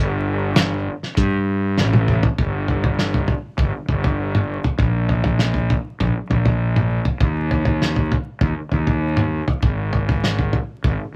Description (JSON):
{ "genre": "psychedelic rock", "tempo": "99 BPM", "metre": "4/4", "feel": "straight", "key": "unclear", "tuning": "A4 = 439 Hz", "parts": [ { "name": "fuzz fingered electric bass", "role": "bass", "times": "0.0-11.0 s", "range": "G1 to G2", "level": "-23 LUFS", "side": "equal", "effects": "overdrive" }, { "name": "cloth-damped thuddy drum kit", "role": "drums", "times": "0.6-11.0 s", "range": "hi-hat, kick drum, snare drum, toms", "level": "-22 LUFS", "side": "equal", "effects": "none" } ], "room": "light reverb", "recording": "vinyl crackle", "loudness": "-20 LUFS", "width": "mono", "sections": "0.0-2.4 A section; 2.4-11.2 B section", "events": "drum fill 1.8-2.4", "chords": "none" }